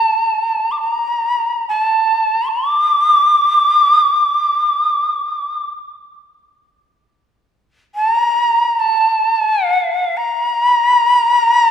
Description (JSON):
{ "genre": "japanese traditional, Japanese chamber music", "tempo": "free time", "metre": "none", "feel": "none", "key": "unclear", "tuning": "A4 = 442 Hz", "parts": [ { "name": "breathy shakuhachi", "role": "solo", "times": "0.0-11.7 s", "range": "A5 to D6", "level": "-12 LUFS", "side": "equal", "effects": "none" } ], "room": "wet scoring stage reverb, RT60 1.8 s", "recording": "recorded in a church or concert hall", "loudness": "-12 LUFS", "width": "side -8 dB against mid", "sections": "0.0-11.7 A section", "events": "none", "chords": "none", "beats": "free time" }